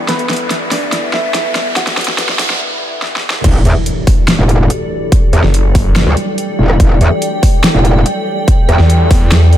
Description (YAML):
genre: heavy wobble dubstep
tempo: 143 BPM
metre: 4/4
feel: half-time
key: E minor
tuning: A4 = 440 Hz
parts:
  - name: supersaw pad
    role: sustained chords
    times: 0.0-9.6 s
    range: G2 to B3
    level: -23 LUFS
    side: equal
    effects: phaser, sidechain pumping, low-pass filter
  - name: riser and impact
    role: sound effects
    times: 0.0-5.1 s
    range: none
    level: -21 LUFS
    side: equal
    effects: none
  - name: granular cloud pad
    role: texture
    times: 0.0-9.6 s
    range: E4 to G5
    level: -21 LUFS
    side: equal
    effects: built-in reverb, sidechain pumping
  - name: warm baby grand piano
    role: melody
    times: 0.1-2.6 s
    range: B3 to F#5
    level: -20 LUFS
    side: equal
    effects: ping-pong delay
  - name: big-room dance drum kit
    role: drums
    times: 0.1-9.6 s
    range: crash cymbal, hi-hat, rim click, snare drum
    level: -17 LUFS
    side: equal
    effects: overdrive, small room ambience
  - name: metallic wobble bass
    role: bass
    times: 3.4-8.8 s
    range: E1 to E2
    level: -10 LUFS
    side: equal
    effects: distortion, chorus, overdrive
  - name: electronic kick drum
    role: drums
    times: 3.4-9.2 s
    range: none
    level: -10 LUFS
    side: equal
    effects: overdrive, small room ambience
  - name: snarling distorted saw bass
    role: bass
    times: 5.4-6.0, 8.8-9.6 s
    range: F#1 to E2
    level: -9 LUFS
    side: equal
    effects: overdrive
room: light reverb, digital ambience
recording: high-pass filter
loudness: -10 LUFS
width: side -12 dB against mid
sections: 0.0-3.4 A section; 3.4-9.6 B section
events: build-up 0.0-3.4; drum fill 0.0-2.6, 3.0-3.4; riser 0.0-2.6; filter sweep 0.0-3.4; break 2.6-3.4; drop 3.4-9.6; impact 3.4-5.1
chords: 0.0 Emadd9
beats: | 0.09 0.51 0.93 1.34 | 1.76 2.18 2.60 3.02 | 3.44 3.86 4.28 4.70 | 5.12 5.54 5.96 6.38 | 6.80 7.22 7.64 8.06 | 8.48 8.90 9.32